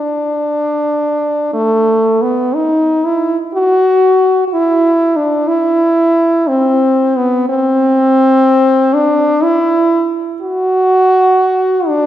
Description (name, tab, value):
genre	classical, free, expressive piece for unaccompanied French horn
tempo	61 BPM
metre	3/4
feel	uneven beats, rubato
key	unclear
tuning	A4 = 444 Hz
part	clear French horn	solo	0.0-12.1 s	A3 to F#4	-10 LUFS	equal	none
room	wet scoring stage reverb, RT60 1.9 s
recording	heard from further back in the room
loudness	-10 LUFS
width	side -12 dB against mid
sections	0.0-12.1 A section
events	none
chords	none